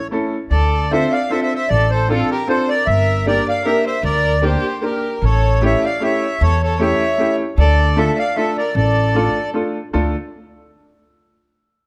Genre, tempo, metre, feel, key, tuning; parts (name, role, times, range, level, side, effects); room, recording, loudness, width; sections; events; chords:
musette waltz; 153 BPM; 3/4; swing 54% on 8ths; D minor; A4 = 440 Hz
accordion; melody; 0.0-9.5 s; A4 to F5; -22 LUFS; equal
bright upright piano; accompaniment; 0.1-10.1 s; A3 to Bb4; -23 LUFS; equal
rich violin; second line; 0.5-9.5 s; F4 to D5; -26 LUFS; equal
upright bass; bass; 0.5-10.1 s; G1 to E2; -19 LUFS; equal
light reverb; close, detailed microphones; -17 LUFS; mono
0.0-9.9 A section; 9.9-11.1 B section
0.0 A; 0.5 Dm7; 2.9 Gm; 5.2 A7; 7.6 Dm